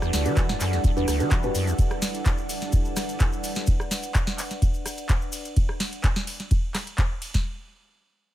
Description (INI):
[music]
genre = acid house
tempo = 127 BPM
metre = 4/4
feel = straight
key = E minor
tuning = A4 = 438 Hz
[part]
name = string machine, full ensemble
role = sustained chords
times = 0.0-3.6 s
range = G3 to A4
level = -34 LUFS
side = equal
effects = ensemble chorus, sidechain pumping
[part]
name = liquid acid bass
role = riff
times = 0.0-1.7 s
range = D2 to E3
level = -27 LUFS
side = equal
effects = ensemble chorus
[part]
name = deep mellow chord stab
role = stabs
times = 0.0-1.5 s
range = D4 to D5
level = -30 LUFS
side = right 1 dB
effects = chorus, dub echo
[part]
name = booming analog drum machine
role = drums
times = 0.0-7.4 s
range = handclaps, hi-hat, ride cymbal, rim click, snare drum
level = -31 LUFS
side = equal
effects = none
[part]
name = maracas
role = percussion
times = 0.0-5.5 s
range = none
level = -38 LUFS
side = left 3 dB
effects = none
[part]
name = warbly tape-like pad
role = texture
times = 0.0-5.6 s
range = D4 to F#5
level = -34 LUFS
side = right 2 dB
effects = chorus, built-in reverb, sidechain pumping
[part]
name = electronic kick drum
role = drums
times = 0.4-7.4 s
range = none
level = -22 LUFS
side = equal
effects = none
[sound]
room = digital ambience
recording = none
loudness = -22 LUFS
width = side -13 dB against mid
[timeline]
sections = 0.0-7.5 A section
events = drop 0.0-7.5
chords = 0.0 Em7